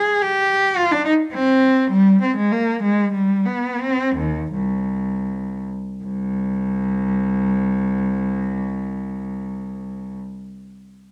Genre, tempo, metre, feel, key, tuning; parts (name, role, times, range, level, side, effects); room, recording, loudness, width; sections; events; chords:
classical, baroque-style suite movement for unaccompanied cello; 74-110 BPM; 3/4; rubato; C minor; A4 = 440 Hz
rich cello; solo; 0.0-10.2 s; C2 to Ab4; -21 LUFS; equal
light reverb; dark, warm production; -20 LUFS; mono
0.0-6.0 A section; 6.0-10.6 B section
slowing down 1.0-6.0